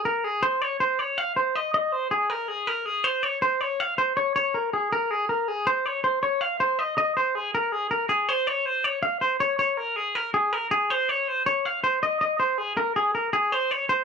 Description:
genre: rock.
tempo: 321 BPM (eighths).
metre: 7/8.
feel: straight.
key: Db major.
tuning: A4 = 438 Hz.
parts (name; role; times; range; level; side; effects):
twangy electric guitar; solo; 0.0-14.0 s; Ab4 to F5; -22 LUFS; equal; none.
room: little or no reverb.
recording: dry, close 1970s-style studio recording.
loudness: -22 LUFS.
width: side -6 dB against mid.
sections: 0.0-5.7 A section; 5.7-14.0 B section.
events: none.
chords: none.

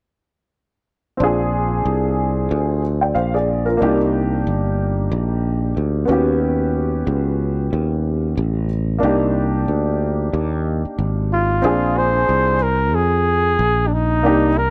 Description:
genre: hip hop.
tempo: 92 BPM.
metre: 4/4.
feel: swing 58% on 16ths.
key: unclear.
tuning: A4 = 440 Hz.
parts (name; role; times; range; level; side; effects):
dark upright piano; accompaniment; 1.2-14.5 s; Bb3 to G5; -23 LUFS; equal; none.
sustaining fretless electric bass; bass; 1.2-14.7 s; G1 to F2; -22 LUFS; equal; none.
breathy flugelhorn; melody; 11.3-14.7 s; D4 to C5; -20 LUFS; equal; none.
room: light reverb, small room ambience.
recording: none.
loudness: -19 LUFS.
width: mono.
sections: 1.2-11.6 A section; 11.6-14.7 B section.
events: none.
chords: 1.2 Bb9; 3.8 Cm7; 6.1 Eb7alt; 9.0 Cm9; 11.6 Bb9.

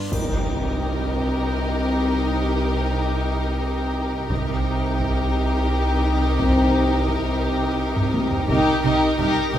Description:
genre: cinematic, suspense film score.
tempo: 86 BPM.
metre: 3/4.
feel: straight.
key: C minor.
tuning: A4 = 440 Hz.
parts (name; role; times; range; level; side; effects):
reverse cymbal and impact; sound effects; 0.0-2.2 s; none; -31 LUFS; equal; none.
felt-muted upright piano; texture; 0.0-8.5 s; C4 to C5; -28 LUFS; left 1 dB; none.
clear studio violin section; melody; 0.1-9.6 s; Bb4; -30 LUFS; left 3 dB; none.
warm studio violin section; second line; 0.1-9.6 s; G4; -28 LUFS; left 2 dB; none.
rich studio viola section; accompaniment; 0.1-9.6 s; Eb4; -26 LUFS; right 2 dB; none.
rich studio double bass section; bass; 0.1-9.6 s; C2; -25 LUFS; equal; none.
warm studio cello section; bass; 0.1-9.6 s; C3; -27 LUFS; equal; none.
taiko ensemble; drums; 0.1-9.6 s; none; -28 LUFS; equal; none.
triangle; percussion; 0.1-1.5 s; none; -40 LUFS; left 2 dB; none.
room: wet scoring stage reverb, RT60 1.8 s.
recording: recorded in a church or concert hall.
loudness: -19 LUFS.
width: side -11 dB against mid.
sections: 0.1-9.6 A section.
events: impact 0.1-2.2; drum fill 8.0-8.5.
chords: 0.1 Cm7.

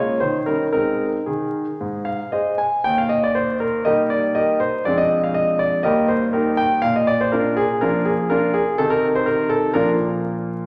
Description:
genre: classical-period piano sonatina.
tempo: 112-126 BPM.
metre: 4/4.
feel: rubato.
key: Eb major.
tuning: A4 = 436 Hz.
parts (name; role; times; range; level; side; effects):
warm concert grand piano; solo; 0.0-10.7 s; Eb2 to Ab5; -20 LUFS; equal; none.
room: wet recital hall reverb, RT60 1.5 s.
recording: vinyl crackle.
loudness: -20 LUFS.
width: mono.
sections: 0.0-2.9 A section; 2.9-10.7 B section.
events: none.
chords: 0.2 Eb7; 0.7 Ab; 2.9 Eb; 4.9 Ddim/F; 5.8 Eb; 6.8 Bb; 8.8 Cm7; 9.8 Bb.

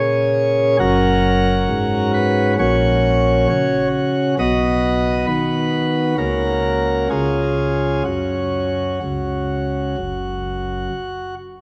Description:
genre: classical, chorale-style piece for pipe organ.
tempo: 62-68 BPM.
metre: 4/4.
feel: rubato.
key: F# major.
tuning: A4 = 439 Hz.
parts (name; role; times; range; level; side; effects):
chamber organ, principal chorus; solo; 0.0-11.3 s; F#1 to D#5; -19 LUFS; equal; none.
room: wet church reverb, RT60 2.4 s.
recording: none.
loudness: -19 LUFS.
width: mono.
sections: 0.0-11.6 A section.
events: none.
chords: 0.0 C#5; 0.8 F#; 2.6 F#/A#; 4.4 B; 6.2 F#/C#; 7.1 C#; 8.1 F#5.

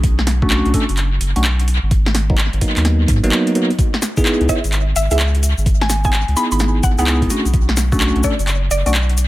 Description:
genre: UK garage, two-step garage.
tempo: 128 BPM.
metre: 4/4.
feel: swing 65% on 16ths.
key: C# minor.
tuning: A4 = 439 Hz.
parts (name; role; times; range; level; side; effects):
saturated sub bass; bass; 0.0-9.3 s; F#1 to G#2; -16 LUFS; equal; none.
electronic kick drum; drums; 0.0-8.4 s; none; -18 LUFS; equal; overdrive, studio ambience.
garage drum kit; drums; 0.0-9.3 s; handclaps, hi-hat, snare drum; -22 LUFS; equal; overdrive, studio ambience, tape echo.
bell-like tine electric piano; stabs; 0.4-8.9 s; F#3 to C#5; -20 LUFS; equal; phaser, dub echo.
cabasa; percussion; 3.8-9.3 s; none; -28 LUFS; left 5 dB; tape echo.
mallet-like synth pluck; melody; 4.5-8.9 s; D5 to B5; -23 LUFS; equal; chorus, tape echo.
room: light reverb.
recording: echo-heavy mix.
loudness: -14 LUFS.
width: side -16 dB against mid.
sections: 0.0-9.3 A section.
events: none.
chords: 0.0 Bm7; 1.9 G#m7; 3.8 C#m7; 7.3 Bm7.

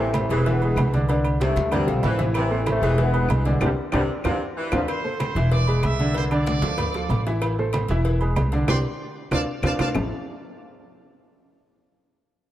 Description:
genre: latin, salsa.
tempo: 189 BPM.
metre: 4/4.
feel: straight.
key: A minor.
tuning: A4 = 441 Hz.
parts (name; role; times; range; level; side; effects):
mellow trombone section; melody; 0.0-4.8 s; A2 to B3; -27 LUFS; left 2 dB; none.
clear saxophone section; second line; 0.0-4.7 s; C3 to E3; -32 LUFS; equal; none.
clear concert grand piano; accompaniment; 0.0-10.1 s; D3 to A5; -26 LUFS; right 1 dB; none.
upright bass; bass; 0.0-10.1 s; E1 to D2; -24 LUFS; equal; none.
claves; percussion; 0.1-10.0 s; none; -37 LUFS; left 4 dB; none.
congas; percussion; 0.1-10.0 s; none; -30 LUFS; equal; none.
cowbell and bongos; percussion; 0.1-10.0 s; none; -34 LUFS; left 4 dB; none.
timbales and agogo bells; percussion; 0.1-10.0 s; none; -33 LUFS; right 4 dB; none.
bright trumpet section; melody; 4.7-9.9 s; B4 to E6; -31 LUFS; right 2 dB; none.
room: moderate plate reverb, RT60 2.8 s.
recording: heard from further back in the room.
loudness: -20 LUFS.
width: side -13 dB against mid.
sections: 0.0-4.9 A section; 4.9-10.0 B section; 10.0-11.2 C section.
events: drum fill 3.6-4.9, 8.7-10.0; band accent 3.6-4.9, 8.7-10.0.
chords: 0.5 E7; 1.1 Csus2; 1.7 Dm7; 2.4 Am; 3.0 E7; 3.6 Csus2; 4.2 Dm7; 4.9 Am; 5.5 E7; 6.1 Csus2; 6.8 Dm; 7.4 Am; 8.1 E7; 8.7 Csus2; 9.3 Dm7; 10.0 A5.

